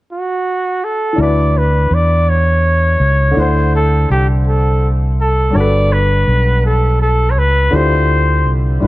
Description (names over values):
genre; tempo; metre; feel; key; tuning
R&B; 55 BPM (dotted quarters); 6/8; straight; D major; A4 = 437 Hz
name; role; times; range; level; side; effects
clear flugelhorn; melody; 0.1-8.9 s; F#4 to D5; -16 LUFS; equal; none
warm grand piano; accompaniment; 1.1-8.9 s; D3 to F#5; -20 LUFS; left 1 dB; none
fingered electric bass; bass; 1.2-8.9 s; G1 to E2; -13 LUFS; equal; none
room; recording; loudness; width
light reverb, small room ambience; none; -11 LUFS; side -17 dB against mid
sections
0.0-1.2 A section; 1.2-8.9 B section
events
none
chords
0.0 N.C.; 1.2 D69; 3.4 D9; 5.5 Gmaj7; 7.7 Dm11